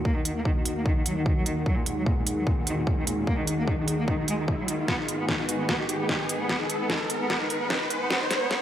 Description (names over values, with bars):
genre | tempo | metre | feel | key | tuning
heavy wobble dubstep | 149 BPM | 4/4 | half-time | Eb minor | A4 = 440 Hz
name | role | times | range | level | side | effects
rich cello | melody | 0.0-8.6 s | Bb2 to Cb4 | -30 LUFS | equal | none
lush unison pad | sustained chords | 0.0-8.6 s | Eb2 to Bb4 | -31 LUFS | equal | chorus, sidechain pumping
riser | sound effects | 2.0-8.6 s | none | -33 LUFS | equal | none
electronic kick drum | drums | 0.1-8.6 s | none | -27 LUFS | equal | small room ambience
dubstep drum kit | drums | 0.3-8.6 s | hi-hat, snare drum | -28 LUFS | equal | small room ambience
room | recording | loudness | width
light reverb | high-pass filter | -24 LUFS | side -10 dB against mid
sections
0.0-8.6 A section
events
build-up 0.0-8.6; filter sweep 0.0-8.6; riser 2.0-8.6; drum fill 4.9-8.6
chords
0.0 Ebm; 4.9 Abm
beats
| 0.05 0.45 0.86 1.26 | 1.66 2.06 2.47 2.87 | 3.27 3.67 4.08 4.48 | 4.88 5.29 5.69 6.09 | 6.49 6.90 7.30 7.70 | 8.11 8.51